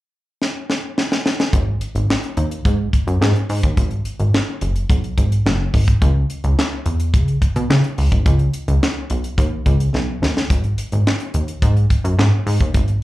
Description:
early-eighties boogie funk; 107 BPM; 4/4; straight; G# minor; A4 = 439 Hz
tight funk drum kit; drums; 0.4-13.0 s; handclaps, hi-hat, kick drum, snare drum; -18 LUFS; equal; slapback echo
plucky analog bass; bass; 1.5-13.0 s; F#1 to C#3; -17 LUFS; equal
little or no reverb; live gig heard through the venue's PA, club reverb; -16 LUFS; side -17 dB against mid
0.0-1.5 A section; 1.5-13.0 B section
drum fill 0.4-1.5, 9.9-10.5
0.41 0.97 | 1.53 2.09 2.65 3.21 | 3.77 4.33 4.89 5.46 | 6.02 6.58 7.14 7.70 | 8.26 8.82 9.38 9.94 | 10.50 11.06 11.62 12.19 | 12.75

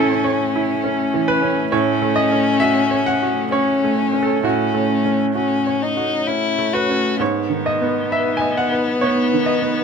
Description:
neoclassical piano and strings; 66 BPM; 3/4; rubato; F# dorian; A4 = 438 Hz
rich violin; melody; 0.0-9.8 s; B3 to F#4; -20 LUFS; left 6 dB
bright baby grand piano; accompaniment; 0.0-9.8 s; G#2 to G#5; -19 LUFS; right 4 dB
dark analog pad; sustained chords; 0.0-9.8 s; A3 to C#5; -26 LUFS; left 1 dB; chorus
light reverb; close, detailed microphones; -16 LUFS; side -6 dB against mid
0.0-9.8 A section
0.0 A; 1.7 F#m/A; 7.2 G#m
0.83 | 1.72 2.62 3.52 | 4.44 5.36 6.28 | 7.20 8.12 9.03

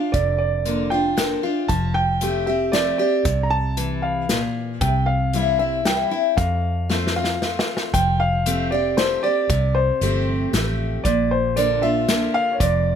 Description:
honky-tonk and classic country; 116 BPM; 3/4; straight; F major; A4 = 441 Hz
warm upright piano; melody; 0.0-13.0 s; C5 to Bb5; -22 LUFS; right 2 dB
picked steel-string acoustic guitar; accompaniment; 0.0-13.0 s; F2 to G4; -23 LUFS; left 3 dB
vintage muted fingered electric bass; bass; 0.1-13.0 s; F1 to F2; -24 LUFS; right 1 dB
unplugged drum kit; drums; 0.1-12.7 s; hi-hat, kick drum, snare drum; -24 LUFS; left 1 dB
light reverb; -18 LUFS; side -8 dB against mid
0.0-7.9 A section; 7.9-13.0 A section
drum fill 6.9-7.9
0.0 Bb; 1.7 Fadd9; 4.8 C; 6.4 F; 7.9 Fadd9; 11.1 Bb
| 0.14 0.66 1.18 | 1.70 2.22 2.74 | 3.26 3.78 4.30 | 4.82 5.33 5.86 | 6.38 6.89 7.42 | 7.93 8.46 8.97 | 9.49 10.02 10.54 | 11.05 11.57 12.09 | 12.61

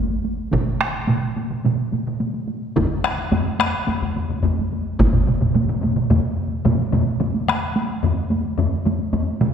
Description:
japanese traditional, taiko drum ensemble; 108 BPM; 4/4; straight
taiko ensemble; percussion; 0.1-9.5 s; -24 LUFS; right 1 dB
taiko ensemble; percussion; 0.5-9.5 s; -22 LUFS; right 3 dB
taiko ensemble; percussion; 0.5-5.1 s; -23 LUFS; equal
taiko ensemble; percussion; 2.8-9.3 s; -22 LUFS; left 3 dB
wet concert hall reverb, RT60 1.9 s; recorded in a church or concert hall; -19 LUFS; side -8 dB against mid
0.0-7.2 A section; 7.2-9.5 B section
| 0.53 1.09 1.65 2.21 | 2.77 3.32 3.88 4.44 | 4.99 5.55 6.10 6.65 | 7.21 7.76 8.31 8.86 | 9.41

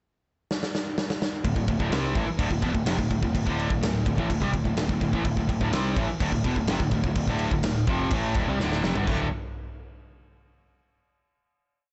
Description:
heavy metal; 126 BPM; 4/4; straight; D minor; A4 = 445 Hz
big rock drum kit; drums; 0.5-9.2 s; crash cymbal, kick drum, snare drum, toms; -31 LUFS; equal
distorted electric guitar; riff; 1.4-9.3 s; D2 to C4; -30 LUFS; equal; distortion
distorted electric guitar; riff; 1.4-9.3 s; D2 to C4; -34 LUFS; equal; distortion
growling picked electric bass; bass; 1.4-9.3 s; D1 to C2; -33 LUFS; equal; overdrive
light reverb; blown-out, overdriven recording, overdrive, nothing above 8.0 kHz; -26 LUFS; mono
0.0-1.4 pickup bar; 1.4-9.1 riff; 9.1-11.0 final chord
drum fill 0.5-1.4, 8.6-9.1
0.0 N.C.; 1.4 Dm; 9.1 D5
0.03 0.50 0.97 | 1.45 1.92 2.39 2.87 | 3.34 3.82 4.30 4.77 | 5.25 5.73 6.21 6.68 | 7.16 7.64 8.12 8.60 | 9.07

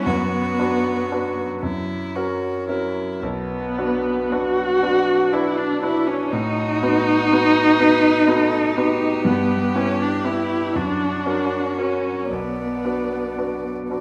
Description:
classical, slow romantic movement for piano quartet; 36-42 BPM (dotted quarters); 6/8; rubato; B minor; A4 = 441 Hz
warm cello; second line; 0.0-13.9 s; B3 to F#4; -30 LUFS; equal
bright grand piano; accompaniment; 0.0-14.0 s; B1 to B4; -25 LUFS; equal
rich viola; accompaniment; 0.0-13.9 s; B3 to F#4; -23 LUFS; equal
warm violin; melody; 0.1-14.0 s; D4 to D5; -31 LUFS; equal
wet scoring stage reverb, RT60 1.8 s; -21 LUFS; mono
0.0-14.0 A section
0.1 Bm/F#; 1.6 F#; 3.2 Bm; 6.3 B7/A; 9.3 Em/G; 10.7 F#; 12.3 Bm
| 0.06 1.63 | 3.22 4.83 | 6.32 7.79 | 9.25 10.75 | 12.30 13.90

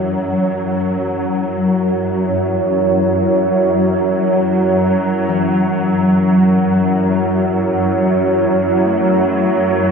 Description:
dark ambient drone; free time; A4 = 444 Hz
deep dark ambient pad; sustained chords; 0.0-9.9 s; E4 to C#5; -17 LUFS; right 2 dB; chorus, built-in reverb
swarming drone; drone; 0.0-9.9 s; F#2 to F#3; -15 LUFS; left 1 dB; built-in reverb
gamelan-type bossed gongs; arpeggios; 5.3-9.9 s; E3 to A3; -28 LUFS; left 3 dB
wet spring reverb, RT60 2.4 s; echo-heavy mix; -13 LUFS; side -5 dB against mid
0.0-9.9 A section
0.0 F#5
free time

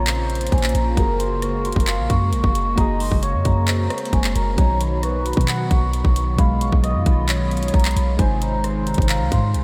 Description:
hip hop, trap; 133 BPM; 4/4; half-time; A4 = 441 Hz
vibraphone with soft mallets; melody; 0.0-9.6 s; Ab5 to D#6; -29 LUFS; equal; analog delay
soft octave-layered synth lead; second line; 0.0-9.5 s; Bb4 to F#5; -31 LUFS; equal; chorus, phaser, analog delay
soft electric-piano-like synth keys; accompaniment; 0.0-9.6 s; B2 to C5; -31 LUFS; equal; chorus
hollow soft pad; sustained chords; 0.0-9.6 s; C3 to Gb4; -31 LUFS; equal; ensemble chorus
clean 808-style bass; bass; 0.0-9.6 s; Gb1 to B2; -24 LUFS; equal
trap drum kit; drums; 0.1-9.6 s; handclaps, hi-hat, kick drum, rim click; -24 LUFS; equal
moderate huge ambient reverb, RT60 7.4 s; dreamy mix soaked in reverb; -20 LUFS; mono
0.0-9.6 A section
0.0 Bbm; 1.0 Gbadd9; 4.6 B; 8.2 Ab
0.07 0.52 | 0.97 1.42 1.87 2.33 | 2.78 3.23 3.68 4.13 | 4.58 5.03 5.48 5.93 | 6.38 6.84 7.29 7.74 | 8.19 8.64 9.09 9.54

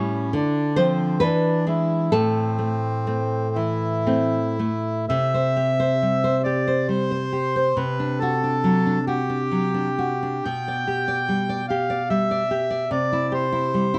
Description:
romantic duo for bandoneon and classical guitar; 54-75 BPM; 3/4; rubato; A minor, C major from 5.1 s; A4 = 440 Hz
bandoneon; melody; 0.0-14.0 s; C4 to G5; -27 LUFS; equal; plate reverb
nylon-string guitar; accompaniment; 0.0-14.0 s; A2 to D5; -24 LUFS; equal
light reverb; dark, warm production; -22 LUFS; mono
0.0-5.1 A section; 5.1-14.0 B section
0.3 Dm7; 1.2 E7; 2.1 Am; 5.1 C; 7.8 D7/C; 10.4 G/B; 12.9 C
0.34 1.21 | 2.12 3.08 4.06 | 5.10 6.01 6.89 | 7.77 8.63 9.50 | 10.44 11.28 12.09 | 12.91 13.74

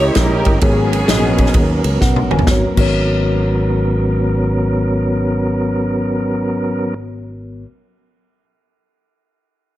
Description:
uptempo gospel; 130 BPM; 4/4; swing 65% on 8ths; G# minor; A4 = 442 Hz
warm studio string section; melody; 0.0-2.0 s; B3 to C#5; -19 LUFS; right 1 dB
tonewheel organ; sustained chords; 0.0-6.9 s; F#3 to D#5; -20 LUFS; right 1 dB; fast rotary speaker
fingered electric bass; bass; 0.0-7.6 s; G1 to D#2; -19 LUFS; equal
natural country drum kit; drums; 0.1-2.9 s; crash cymbal, kick drum, ride cymbal, snare drum, toms; -17 LUFS; equal
mellow tine electric piano; accompaniment; 0.6-7.7 s; G#1 to G#5; -22 LUFS; left 3 dB; slow stereo tremolo
studio reverb; -13 LUFS; side -14 dB against mid
0.0-2.5 A section; 2.5-6.2 B section
tine electric piano fill 1.8-2.5; drum fill 2.0-2.5
0.0 D#7b9; 0.6 G#m11
0.16 | 0.62 1.09 1.55 2.01 | 2.48 2.94 3.40 3.87 | 4.33 4.79 5.25 5.72

